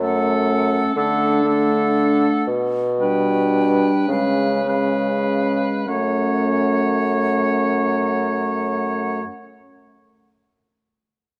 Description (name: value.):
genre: classical, slow romantic movement for wind quintet.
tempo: 32-43 BPM (dotted quarters).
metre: 6/8.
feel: rubato.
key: F# minor.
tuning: A4 = 436 Hz.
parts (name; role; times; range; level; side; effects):
silver concert flute; melody; 0.0-9.2 s; E#5 to G5; -30 LUFS; equal; none.
clear oboe; second line; 0.0-9.2 s; A4 to C#5; -27 LUFS; equal; none.
mellow French horn; accompaniment; 0.0-9.2 s; G3 to A3; -26 LUFS; equal; none.
warm clarinet; accompaniment; 0.0-9.2 s; C#4 to D4; -26 LUFS; equal; none.
clear bassoon; bass; 0.0-9.2 s; F#2 to D3; -24 LUFS; equal; none.
room: wet recital hall reverb, RT60 1.8 s.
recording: dark, warm production.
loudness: -19 LUFS.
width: mono.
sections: 0.0-5.9 A section; 5.9-9.3 B section.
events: slowing down 0.0-5.9.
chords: 0.0 F#m; 1.0 D; 2.5 G/B; 4.1 C#7; 5.9 F#m.